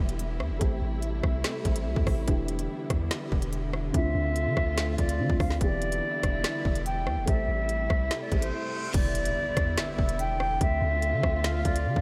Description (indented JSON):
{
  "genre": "hip hop, drill",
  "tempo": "144 BPM",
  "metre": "4/4",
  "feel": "half-time",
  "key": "E phrygian",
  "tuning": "A4 = 437 Hz",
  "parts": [
    { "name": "dark grand piano", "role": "accompaniment", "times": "0.0-9.0 s", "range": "D3 to C5", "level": "-39 LUFS", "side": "equal", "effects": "analog chorus, low-pass filter" },
    { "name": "dark studio string section", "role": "sustained chords", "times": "0.0-12.0 s", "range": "C3 to F4", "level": "-38 LUFS", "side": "equal", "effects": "none" },
    { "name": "long sustained 808-style bass", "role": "bass", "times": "0.0-12.0 s", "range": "E1 to D3", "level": "-32 LUFS", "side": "equal", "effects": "none" },
    { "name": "drill drum kit", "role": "drums", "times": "0.1-12.0 s", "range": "crash cymbal, finger snaps, hi-hat, kick drum, rim click, snare drum", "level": "-31 LUFS", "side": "equal", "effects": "none" },
    { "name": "silver concert flute", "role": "melody", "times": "3.9-12.0 s", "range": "C5 to G5", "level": "-33 LUFS", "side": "equal", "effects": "low-pass filter, tape echo" },
    { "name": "reverse cymbal and impact", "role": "sound effects", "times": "8.3-10.6 s", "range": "none", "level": "-43 LUFS", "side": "equal", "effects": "none" },
    { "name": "breathy flute-like synth lead", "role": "second line", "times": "9.8-12.0 s", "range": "E5 to G5", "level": "-38 LUFS", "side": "equal", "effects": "chorus, tape echo" }
  ],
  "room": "moderate huge ambient reverb, RT60 6.1 s",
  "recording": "dreamy mix soaked in reverb",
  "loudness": "-28 LUFS",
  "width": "mono",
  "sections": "0.0-8.9 A section; 8.9-12.0 B section",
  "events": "break 0.0-3.9, 8.5-8.9; reverse cymbal 8.3-8.9; impact 8.9-10.6",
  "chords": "0.0 Em7; 0.6 Am7; 2.3 Em7; 3.9 Dm7; 5.6 Em7; 7.3 Am7; 8.9 Em7; 10.6 Dm7"
}